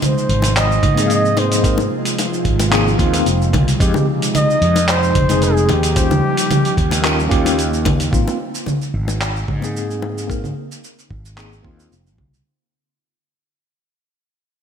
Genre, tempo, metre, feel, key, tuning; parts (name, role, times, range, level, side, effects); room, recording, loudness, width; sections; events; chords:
sunset chillout; 111 BPM; 4/4; straight; Ab major; A4 = 440 Hz
breathy flugelhorn; melody; 0.0-7.6 s; G4 to F5; -20 LUFS; equal; tape echo, slapback echo
airy breathy pad; sustained chords; 0.0-8.1 s; C3 to F4; -23 LUFS; right 1 dB; chorus
dusty soul sampler-style drum kit; drums; 0.0-12.4 s; cabasa, congas, handclaps, hi-hat; -20 LUFS; equal
bongos; percussion; 0.0-10.1 s; -28 LUFS; left 6 dB
fretless electric bass; bass; 0.3-12.4 s; F1 to Ab2; -19 LUFS; equal
electronic kick drum; drums; 0.8-12.3 s; -19 LUFS; equal
tine electric piano; accompaniment; 0.9-11.9 s; Ab3 to C5; -22 LUFS; moving between left 4 dB and right 2 dB; medium stereo tremolo, auto-pan, tape echo, slapback echo
moderate concert hall reverb, RT60 2.1 s; big arena sound; -14 LUFS; side -8 dB against mid
0.0-8.1 A section; 8.1-12.5 B section
fade-out 8.1-12.5
0.0 Ab6; 3.8 Fm7; 5.7 Eb9; 8.1 Ab6